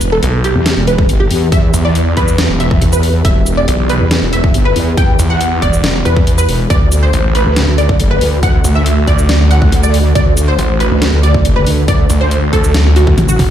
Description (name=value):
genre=heavy wobble dubstep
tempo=139 BPM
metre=4/4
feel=half-time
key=E minor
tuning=A4 = 440 Hz
part: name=wide unison pluck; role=melody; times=0.0-13.5 s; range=F#4 to G5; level=-17 LUFS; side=right 1 dB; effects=analog chorus, tape echo
part: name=lush unison pad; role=sustained chords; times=0.7-13.5 s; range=D3 to G4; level=-21 LUFS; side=right 1 dB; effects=chorus, sidechain pumping
part: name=wobble bass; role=bass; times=0.0-13.4 s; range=E1 to E2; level=-13 LUFS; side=equal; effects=chorus, overdrive
part: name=dubstep drum kit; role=drums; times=0.0-13.5 s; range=hi-hat, shaker, snare drum, toms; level=-19 LUFS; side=equal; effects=overdrive
part: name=snarling distorted saw bass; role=bass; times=0.2-13.5 s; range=E1 to E2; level=-12 LUFS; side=equal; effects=distortion, overdrive
part: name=electronic kick drum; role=drums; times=1.0-13.5 s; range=none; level=-13 LUFS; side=equal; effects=overdrive
room=light reverb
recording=played on a big sound system in a bare room, large studio reverb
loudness=-9 LUFS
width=side -10 dB against mid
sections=0.0-13.5 A section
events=drum fill 12.7-13.5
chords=0.0 Em; 6.7 D